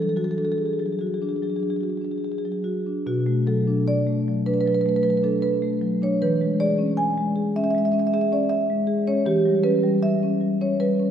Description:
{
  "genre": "classical, contemporary piece for solo marimba",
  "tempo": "71-81 BPM",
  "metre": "4/4",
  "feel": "rubato",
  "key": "unclear",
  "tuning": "A4 = 438 Hz",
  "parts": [
    { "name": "marimba with medium mallets", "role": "solo", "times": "0.0-11.1 s", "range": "B2 to G#5", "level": "-20 LUFS", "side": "equal", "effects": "none" }
  ],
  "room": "wet concert hall reverb, RT60 2.4 s",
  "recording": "heard from further back in the room",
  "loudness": "-20 LUFS",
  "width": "side -9 dB against mid",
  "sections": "0.0-11.1 A section",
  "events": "none",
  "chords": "0.0 E9; 3.1 Bm7; 6.2 E6; 9.3 Em6",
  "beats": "0.59 1.43 2.25 | 3.07 3.88 4.66 5.43 | 6.21 6.99 7.75 8.51 | 9.26 10.04 10.81"
}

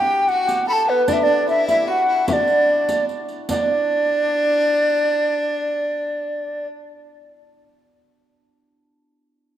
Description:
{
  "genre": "medieval dance",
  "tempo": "149 BPM",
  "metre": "3/4",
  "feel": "straight",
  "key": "D major",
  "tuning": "A4 = 441 Hz",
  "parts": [
    { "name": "mellow hollow tenor recorder", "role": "melody", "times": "0.0-6.7 s", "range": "B4 to B5", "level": "-18 LUFS", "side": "equal", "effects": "none" },
    { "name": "clear fiddle", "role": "second line", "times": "0.0-6.7 s", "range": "B3 to A4", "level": "-28 LUFS", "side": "left 5 dB", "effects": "none" },
    { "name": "hammered dulcimer", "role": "second line", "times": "0.0-7.4 s", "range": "B3 to A4", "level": "-27 LUFS", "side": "right 5 dB", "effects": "none" },
    { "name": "frame drum", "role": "percussion", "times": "0.1-3.7 s", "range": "none", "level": "-31 LUFS", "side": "left 4 dB", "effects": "none" },
    { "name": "riq", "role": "percussion", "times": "0.3-3.7 s", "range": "none", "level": "-31 LUFS", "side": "right 2 dB", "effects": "none" }
  ],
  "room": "moderate lush hall reverb, RT60 2.3 s",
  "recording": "rough home demo mix",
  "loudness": "-17 LUFS",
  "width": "side -11 dB against mid",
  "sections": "0.0-3.5 A section; 3.5-5.9 B section",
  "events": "none",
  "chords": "none",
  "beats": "0.27 0.67 | 1.07 1.48 1.88 | 2.28 2.69 3.09 | 3.49 3.89 4.29 | 4.70 5.10 5.50"
}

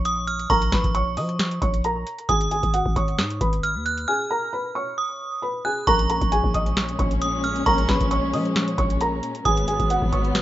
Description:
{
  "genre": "hip hop, trap",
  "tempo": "134 BPM",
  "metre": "4/4",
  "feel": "half-time",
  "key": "Bb phrygian",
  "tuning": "A4 = 440 Hz",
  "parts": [
    { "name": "felt-muted upright piano", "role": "melody", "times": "0.0-10.4 s", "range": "Gb4 to Eb6", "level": "-26 LUFS", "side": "equal", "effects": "plate reverb" },
    { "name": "growling 808-style bass", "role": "bass", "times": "0.0-10.4 s", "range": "Ab1 to F3", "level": "-27 LUFS", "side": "equal", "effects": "none" },
    { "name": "metallic FM bell", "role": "second line", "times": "0.1-10.4 s", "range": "Db6 to Gb6", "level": "-26 LUFS", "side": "right 3 dB", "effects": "chorus, plate reverb, digital delay" },
    { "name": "booming analog drum machine", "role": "drums", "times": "0.1-10.4 s", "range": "hi-hat, kick drum, snare drum", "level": "-24 LUFS", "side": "equal", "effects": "none" },
    { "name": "warm symphonic string section", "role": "sustained chords", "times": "5.9-10.4 s", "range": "Ab2 to Db4", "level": "-28 LUFS", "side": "left 2 dB", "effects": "none" }
  ],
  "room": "light reverb",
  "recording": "rough home demo mix, nothing above 7.7 kHz",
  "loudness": "-20 LUFS",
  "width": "side -14 dB against mid",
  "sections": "0.0-10.4 A section",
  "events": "break 4.1-5.9",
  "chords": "0.0 Bbm; 2.3 Abm7; 5.9 Bbm7; 9.5 Abm7",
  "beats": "0.05 | 0.50 0.95 1.40 1.84 | 2.29 2.74 3.19 3.63 | 4.08 4.53 4.98 5.42 | 5.87 6.32 6.77 7.22 | 7.66 8.11 8.56 9.01 | 9.45 9.90 10.35"
}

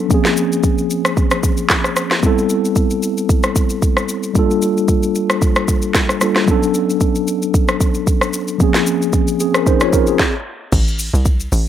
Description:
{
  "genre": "amapiano",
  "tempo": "113 BPM",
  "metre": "4/4",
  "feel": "swing 55% on 16ths",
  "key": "unclear",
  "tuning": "A4 = 440 Hz",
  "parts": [
    { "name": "mellow tine electric piano", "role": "accompaniment", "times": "0.0-10.3 s", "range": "F3 to Db5", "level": "-16 LUFS", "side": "equal", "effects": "medium stereo tremolo" },
    { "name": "afro-pop drum kit", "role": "drums", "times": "0.1-11.7 s", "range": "crash cymbal, handclaps, hi-hat, kick drum, rim click, shaker, snare drum", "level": "-16 LUFS", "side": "equal", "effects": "none" },
    { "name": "tight log drum bass", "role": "bass", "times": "10.7-11.7 s", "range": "A1 to C2", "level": "-16 LUFS", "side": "equal", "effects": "none" }
  ],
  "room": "light reverb",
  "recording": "none",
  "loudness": "-14 LUFS",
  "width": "side -10 dB against mid",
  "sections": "0.0-10.7 A section",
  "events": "stop 10.2-10.7",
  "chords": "0.1 Bbm9; 2.2 Am9; 4.4 Gm9; 6.5 Bm9; 8.6 Bbm9; 10.7 Am",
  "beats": "| 0.11 0.64 1.17 1.70 | 2.23 2.76 3.29 3.82 | 4.35 4.88 5.42 5.95 | 6.48 7.01 7.54 8.07 | 8.60 9.13 9.66 10.20 | 10.73 11.26"
}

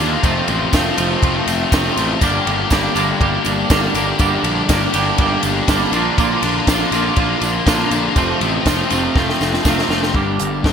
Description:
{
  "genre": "indie rock",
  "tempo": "121 BPM",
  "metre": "4/4",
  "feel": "straight",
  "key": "G minor",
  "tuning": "A4 = 440 Hz",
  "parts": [
    { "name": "cranked stack guitar", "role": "riff", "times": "0.0-10.7 s", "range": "F2 to G4", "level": "-20 LUFS", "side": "left 7 dB", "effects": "overdrive, analog chorus" },
    { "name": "crunchy overdriven guitar", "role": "riff", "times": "0.0-10.7 s", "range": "F2 to G4", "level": "-20 LUFS", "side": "right 6 dB", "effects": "analog chorus, digital delay" },
    { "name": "fuzz picked electric bass", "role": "bass", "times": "0.0-10.7 s", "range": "F1 to Eb2", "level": "-22 LUFS", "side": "equal", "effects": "overdrive" },
    { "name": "compact cocktail drum kit", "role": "drums", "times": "0.2-10.7 s", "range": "crash cymbal, hi-hat, kick drum, ride cymbal, snare drum", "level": "-19 LUFS", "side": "equal", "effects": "gated reverb" },
    { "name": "tambourine", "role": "percussion", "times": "0.2-9.8 s", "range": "none", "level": "-34 LUFS", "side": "right 7 dB", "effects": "none" }
  ],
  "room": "moderate lush hall reverb, RT60 2.3 s",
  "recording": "bright 1980s-style digital production",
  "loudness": "-14 LUFS",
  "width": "side -7 dB against mid",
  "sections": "0.0-10.1 A section",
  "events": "drum fill 9.2-10.1",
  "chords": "0.2 F; 2.2 Gm; 5.9 Bb; 8.2 F; 10.1 Gm",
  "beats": "| 0.24 0.73 1.23 1.72 | 2.22 2.72 3.21 3.71 | 4.20 4.70 5.19 5.69 | 6.18 6.68 7.17 7.67 | 8.16 8.66 9.15 9.65 | 10.14 10.64"
}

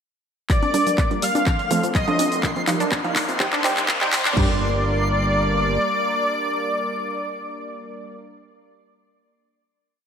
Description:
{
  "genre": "progressive house",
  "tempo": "124 BPM",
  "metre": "4/4",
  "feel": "straight",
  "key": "G minor",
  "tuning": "A4 = 440 Hz",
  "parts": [
    { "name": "soft supersaw", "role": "melody", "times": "0.5-8.2 s", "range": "D5 to F5", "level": "-25 LUFS", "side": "equal", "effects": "ping-pong delay" },
    { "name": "airy dreamy lead", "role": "second line", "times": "0.5-8.2 s", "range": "D6 to F6", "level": "-29 LUFS", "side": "equal", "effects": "chorus, sidechain pumping, ping-pong delay" },
    { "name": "warm analog pad", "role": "sustained chords", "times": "0.5-8.2 s", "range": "F3 to C5", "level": "-30 LUFS", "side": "right 1 dB", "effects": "chorus, sidechain pumping" },
    { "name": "wide unison pluck", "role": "arpeggios", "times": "0.5-4.6 s", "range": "F3 to D4", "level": "-27 LUFS", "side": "left 1 dB", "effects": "sidechain pumping, ping-pong delay" },
    { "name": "fat analog bass", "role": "bass", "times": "0.5-5.8 s", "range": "G1 to F2", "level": "-27 LUFS", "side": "equal", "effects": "sidechain pumping, high-pass filter" },
    { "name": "house drum kit", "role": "drums", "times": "0.5-4.5 s", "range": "crash cymbal, kick drum, toms", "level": "-22 LUFS", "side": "equal", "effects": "none" },
    { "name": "house drum kit", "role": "drums", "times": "0.5-4.3 s", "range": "cabasa, handclaps, hi-hat", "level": "-25 LUFS", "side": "left 1 dB", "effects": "high-pass filter on snare, sidechain pumping on hats, high-pass filter on hats, sidechain pumping on perc, high-pass filter on perc" },
    { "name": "riser", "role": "sound effects", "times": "1.6-4.4 s", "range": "none", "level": "-29 LUFS", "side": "left 1 dB", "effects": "none" },
    { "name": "backwards swelling texture", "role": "texture", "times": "1.4-4.4 s", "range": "C6", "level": "-35 LUFS", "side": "equal", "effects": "built-in reverb, sidechain pumping" },
    { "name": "congas", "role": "percussion", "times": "0.6-4.2 s", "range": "none", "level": "-34 LUFS", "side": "right 4 dB", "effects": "none" },
    { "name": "wide unison pluck", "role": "stabs", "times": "0.7-8.2 s", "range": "F3 to G5", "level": "-27 LUFS", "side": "right 4 dB", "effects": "sidechain pumping, ping-pong delay" }
  ],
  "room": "moderate lush hall reverb, RT60 2.5 s",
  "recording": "high-pass filter",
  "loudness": "-18 LUFS",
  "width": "side -7 dB against mid",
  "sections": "0.5-4.4 build; 4.4-8.2 final chord",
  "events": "build-up 0.5-4.4; drum fill 0.5-4.4; filter sweep on synth pluck 0.5-4.4; filter sweep on analog synth pad 0.5-4.4; filter sweep 0.5-4.4; riser 1.6-4.4",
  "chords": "0.5 Gm; 1.5 F; 2.4 Ebsus2; 3.4 Cm; 4.4 Gm",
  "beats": "| 0.50 0.98 1.47 1.95 | 2.43 2.92 3.40 3.88 | 4.37 4.85 5.34 5.82 | 6.30 6.79 7.27 7.76"
}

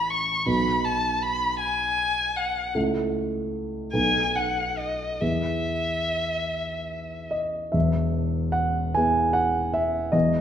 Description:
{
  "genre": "classical, romantic duo for violin and grand piano",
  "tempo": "46-54 BPM (dotted quarters)",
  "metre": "6/8",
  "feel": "rubato",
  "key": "E major",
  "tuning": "A4 = 438 Hz",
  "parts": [
    { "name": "warm violin", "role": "melody", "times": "0.0-7.3 s", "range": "D#5 to C#6", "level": "-25 LUFS", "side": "left 1 dB", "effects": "none" },
    { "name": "dark grand piano", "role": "accompaniment", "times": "0.0-10.4 s", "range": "E1 to G#5", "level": "-24 LUFS", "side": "right 1 dB", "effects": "none" }
  ],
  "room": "wet scoring stage reverb, RT60 1.5 s",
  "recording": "minimal, uncompressed stereo recording",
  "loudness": "-22 LUFS",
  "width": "side -9 dB against mid",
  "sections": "0.0-7.7 A section; 7.7-10.4 B section",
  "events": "none",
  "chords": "0.5 B; 2.8 A/C#; 3.9 B7; 5.2 E",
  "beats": "| 0.47 1.60 | 2.75 3.94 | 5.21 6.49 | 7.75 8.96 | 10.14"
}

